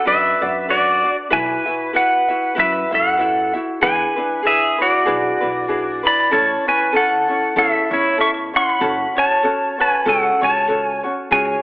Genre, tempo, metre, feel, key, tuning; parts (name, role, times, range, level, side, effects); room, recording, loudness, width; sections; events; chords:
Hawaiian; 96 BPM; 4/4; swing 56% on 8ths; F# minor; A4 = 440 Hz
pedal steel guitar; melody; 0.0-11.6 s; E4 to C#6; -16 LUFS; equal; slapback echo
ukulele; accompaniment; 0.0-11.6 s; C#4 to E5; -22 LUFS; equal
upright bass; bass; 0.1-11.5 s; F#1 to F#2; -33 LUFS; equal
moderate lush hall reverb, RT60 2.1 s; telephone sound; -15 LUFS; side -21 dB against mid
0.0-11.6 A section
0.0 Bm; 1.3 Bsus4; 3.8 E7; 6.3 A; 8.8 F#m